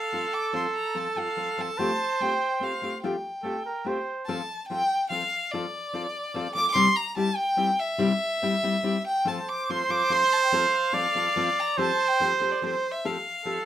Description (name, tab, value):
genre	mexican folk, mariachi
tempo	144 BPM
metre	3/4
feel	straight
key	F major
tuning	A4 = 440 Hz
part	clear violin	melody	0.0-13.7 s	C5 to D6	-27 LUFS	left 1 dB	none
part	warm trumpet	second line	0.0-4.3, 9.3-13.7 s	A4 to D5	-25 LUFS	right 3 dB	none
part	nylon-string guitar	accompaniment	0.1-13.6 s	C3 to A4	-29 LUFS	left 3 dB	none
room	wet studio ambience, RT60 0.5 s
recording	rough home demo mix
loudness	-23 LUFS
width	side -11 dB against mid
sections	0.0-4.3 A section; 4.3-13.7 A section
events	none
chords	0.0 F; 1.8 Fadd9; 4.3 F; 6.7 C; 9.3 F; 11.8 Fadd9